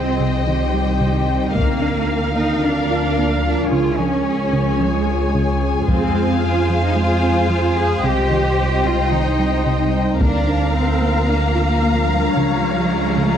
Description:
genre	cinematic, hybrid orchestral and electronic film score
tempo	111 BPM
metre	4/4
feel	straight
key	unclear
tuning	A4 = 439 Hz
part	warm symphonic violin section	second line	0.0-13.4 s	Eb5 to Bb5	-24 LUFS	left 4 dB	none
part	warm symphonic viola section	accompaniment	0.0-13.4 s	G4 to F5	-25 LUFS	equal	none
part	ethereal airy pad	sustained chords	0.0-13.4 s	Eb3 to G5	-24 LUFS	equal	ensemble chorus, built-in reverb
part	rich studio double bass section	bass	0.0-13.4 s	C2 to F2	-21 LUFS	right 1 dB	none
part	rich symphonic cello section	bass	0.0-13.4 s	F3 to Ab4	-23 LUFS	right 2 dB	none
part	thumb-piano-like synth pluck	arpeggios	0.2-13.3 s	C3 to F4	-25 LUFS	equal	chorus, tape echo
part	taiko ensemble	drums	1.6-2.6, 5.9-6.9, 10.2-11.2 s	none	-21 LUFS	left 1 dB	none
part	riser	sound effects	12.0-13.4 s	none	-27 LUFS	right 1 dB	none
room	moderate scoring stage reverb, RT60 1.8 s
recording	dark, warm production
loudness	-15 LUFS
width	side -9 dB against mid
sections	0.0-13.4 A section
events	none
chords	0.0 Cm; 1.6 Bb/D; 3.7 Db; 5.9 Fm; 8.0 Cm; 10.2 Bb/D; 12.4 Db

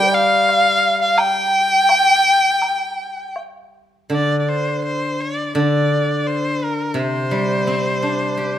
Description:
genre	chinese traditional, Chinese chamber ensemble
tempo	79-88 BPM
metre	4/4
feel	rubato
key	unclear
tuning	A4 = 439 Hz
part	clear erhu	melody	0.0-8.6 s	Bb4 to G5	-18 LUFS	right 1 dB	none
part	low xiao	second line	0.0-3.4 s	Bb4 to G5	-18 LUFS	left 3 dB	none
part	steel-string zither	accompaniment	0.0-8.6 s	C3 to G4	-20 LUFS	left 1 dB	none
part	woodblock	percussion	0.5-3.5 s	none	-25 LUFS	equal	none
room	moderate recital hall reverb, RT60 1.3 s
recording	none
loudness	-15 LUFS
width	side -10 dB against mid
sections	0.0-4.1 A section; 4.1-8.6 B section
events	none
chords	none

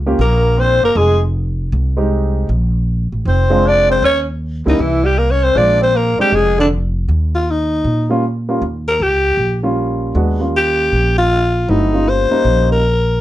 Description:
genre	jazz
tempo	157 BPM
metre	4/4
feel	swing 65% on 8ths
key	Eb mixolydian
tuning	A4 = 440 Hz
part	upright bass	bass	0.0-13.2 s	F1 to Bb2	-17 LUFS	equal	none
part	warm concert grand piano	accompaniment	0.1-12.8 s	Gb3 to G4	-18 LUFS	right 1 dB	none
part	growling alto saxophone	melody	0.2-13.2 s	D4 to D5	-14 LUFS	left 2 dB	none
part	breathy tenor saxophone	second line	0.2-6.7 s	D3 to D4	-20 LUFS	right 4 dB	none
room	light reverb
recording	none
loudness	-13 LUFS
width	side -14 dB against mid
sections	0.0-7.1 A section; 7.1-13.2 A section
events	none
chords	0.0 Eb7(no3) (rootless); 1.0 Fm7; 2.5 Bb7; 4.0 Eb7; 4.8 C7b9; 5.6 Bb7; 7.1 Eb7

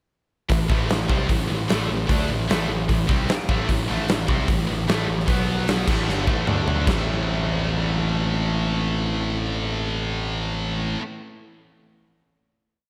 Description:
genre	hard rock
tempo	151 BPM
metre	4/4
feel	straight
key	A minor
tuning	A4 = 439 Hz
part	heavy high-gain guitar	riff	0.5-11.0 s	G2 to D4	-29 LUFS	equal	distortion
part	sludgy distorted guitar	riff	0.5-11.0 s	G2 to E4	-32 LUFS	equal	overdrive, slapback echo
part	growling picked electric bass	bass	0.5-11.0 s	G1 to D2	-29 LUFS	equal	overdrive
part	huge arena drum kit	drums	0.5-7.0 s	crash cymbal, hi-hat, kick drum, snare drum, toms	-26 LUFS	equal	none
room	moderate lush hall reverb, RT60 1.9 s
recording	big arena sound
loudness	-23 LUFS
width	mono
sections	0.5-6.9 riff; 6.9-10.1 final chord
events	drum fill 6.1-6.9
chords	0.5 Am; 5.3 B5; 5.9 A5; 6.5 D5; 6.9 Am

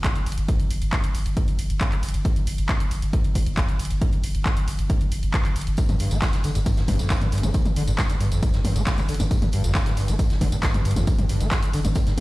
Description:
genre	driving peak-time techno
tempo	136 BPM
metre	4/4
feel	straight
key	G minor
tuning	A4 = 440 Hz
part	saturated sub bass	bass	0.0-12.2 s	G1	-26 LUFS	equal	overdrive, sidechain pumping, low-pass filter
part	electronic kick drum	drums	0.0-12.0 s	none	-23 LUFS	equal	none
part	punchy analog drum machine	drums	0.0-12.2 s	handclaps, hi-hat, tambourine, toms	-29 LUFS	equal	sidechain pumping on hats, sidechain pumping on cymbals, sidechain pumping on perc, sidechain pumping on toms
part	vintage drum kit	drums	5.8-12.2 s	hi-hat, snare drum, tambourine	-39 LUFS	equal	high-pass filter on hats, high-pass filter on snare, high-pass filter on perc, high-pass filter on room
part	screaming distorted acid line	riff	5.9-12.2 s	F2 to Bb3	-26 LUFS	equal	distortion, ensemble chorus, sidechain pumping, dub echo
room	small room ambience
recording	played on a big sound system in a bare room, stone room reverb, lossy compression artefacts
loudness	-20 LUFS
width	side -19 dB against mid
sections	0.0-12.2 A section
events	none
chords	0.0 G5

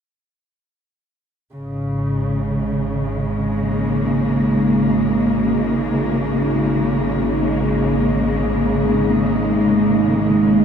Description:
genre	dark ambient drone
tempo	free time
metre	none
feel	none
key	unclear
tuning	A4 = 441 Hz
part	dark symphonic cello section	sustained chords	1.5-10.6 s	C#3 to A#3	-19 LUFS	equal	none
part	overtone-sweeping drone	drone	1.7-10.6 s	G#1 to G#2	-19 LUFS	right 1 dB	chorus, built-in reverb
part	bubbling stepped-filter texture	texture	1.6-10.6 s	D#4 to D#5	-34 LUFS	left 2 dB	chorus, built-in reverb
room	wet cathedral reverb, RT60 5.3 s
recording	none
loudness	-16 LUFS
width	side -7 dB against mid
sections	1.5-10.6 A section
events	fade-in on synth texture 1.5-10.6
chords	1.5 G#sus2

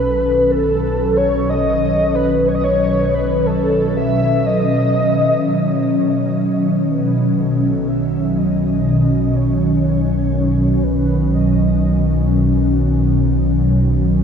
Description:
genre	ambient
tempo	61 BPM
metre	4/4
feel	straight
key	B mixolydian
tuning	A4 = 441 Hz
part	breathy flute-like synth lead	melody	0.0-12.3 s	A4 to E5	-19 LUFS	equal	ensemble chorus, ping-pong delay
part	ethereal airy pad	sustained chords	0.0-14.2 s	B2 to C#4	-16 LUFS	equal	ensemble chorus, built-in reverb
part	deep rumbling drone	bass	0.0-14.2 s	B1	-23 LUFS	equal	built-in reverb
room	wet huge ambient reverb, RT60 7.7 s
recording	worn, warbling old tape, cassette tape, warbly pitch drift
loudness	-14 LUFS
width	side -7 dB against mid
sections	0.0-5.4 A section; 5.4-14.2 B section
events	fade-in on soft synth lead 5.4-14.2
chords	0.0 B

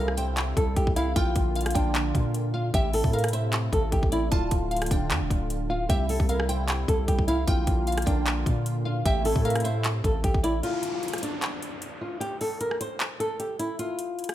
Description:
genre	hip hop, trap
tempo	152 BPM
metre	4/4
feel	half-time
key	unclear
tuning	A4 = 441 Hz
part	flamenco guitar	melody	0.0-14.3 s	D4 to C5	-29 LUFS	equal	low-pass filter
part	glassy wavetable pluck	second line	0.0-10.6 s	D5 to A5	-34 LUFS	equal	chorus, ping-pong delay
part	warm analog pad	sustained chords	0.0-10.6 s	C3 to F4	-35 LUFS	right 2 dB	chorus
part	long sustained 808-style bass	bass	0.0-10.6 s	D1 to Bb2	-28 LUFS	equal	none
part	downlifter	sound effects	0.0-1.2, 10.6-13.8 s	none	-40 LUFS	left 1 dB	none
part	trap drum kit	drums	0.1-14.3 s	handclaps, hi-hat, kick drum, rim click	-27 LUFS	equal	none
room	light reverb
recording	none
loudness	-23 LUFS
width	side -13 dB against mid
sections	0.0-10.6 A section; 10.6-14.3 B section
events	break 10.6-14.3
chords	0.0 C; 1.2 Bb; 2.7 Am; 4.3 Dm; 5.9 C; 7.5 Bb; 9.1 Am; 10.6 N.C.

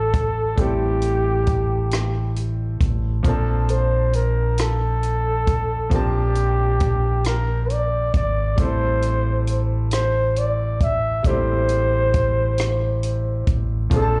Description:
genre	slow six-eight R&B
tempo	45 BPM (dotted quarters)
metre	6/8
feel	straight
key	A phrygian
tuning	A4 = 440 Hz
part	breathy flugelhorn	melody	0.0-14.2 s	G4 to E5	-25 LUFS	equal	slapback echo
part	bright grand piano	accompaniment	0.0-14.2 s	E3 to A5	-33 LUFS	equal	slapback echo
part	deep dub fingered electric bass	bass	0.0-14.2 s	G#1 to Bb1	-24 LUFS	equal	none
part	compact cocktail drum kit	drums	0.1-14.1 s	hi-hat, kick drum, rim click	-25 LUFS	equal	none
room	studio ambience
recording	live gig heard through the venue's PA, club reverb, nothing above 11.0 kHz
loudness	-21 LUFS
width	mono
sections	0.0-14.2 A section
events	none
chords	0.0 Am7; 3.2 Bbmaj9; 8.6 Am7

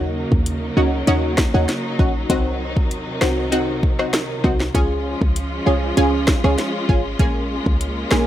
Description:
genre	dancehall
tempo	98 BPM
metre	4/4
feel	straight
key	unclear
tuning	A4 = 440 Hz
part	punchy chord stab	accompaniment	0.0-8.3 s	Bb3 to Ab4	-22 LUFS	equal	chorus
part	warm studio string section	sustained chords	0.0-8.3 s	C3 to F4	-25 LUFS	equal	sidechain pumping
part	short 808-style bass	bass	0.0-8.3 s	Ab1 to Eb2	-22 LUFS	equal	none
part	afro-pop drum kit	drums	0.3-8.3 s	hi-hat, kick drum, rim click, snare drum	-20 LUFS	equal	none
room	digital ambience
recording	none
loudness	-17 LUFS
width	side -12 dB against mid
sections	0.0-8.3 A section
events	none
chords	0.0 Ebm7; 2.3 Cdim; 4.7 Db; 7.2 Bbm7

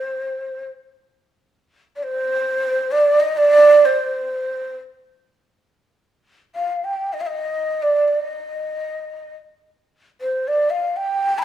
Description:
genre	Arabic maqam ensemble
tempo	free time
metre	none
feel	none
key	C minor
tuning	A4 = 439 Hz
part	breathy mellow ney	solo	0.0-11.4 s	C5 to B5	-17 LUFS	right 2 dB	none
room	wet stone room reverb, RT60 1.1 s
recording	band playing live in one room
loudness	-17 LUFS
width	side -11 dB against mid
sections	0.0-6.0 A section; 6.0-11.4 A section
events	none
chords	none

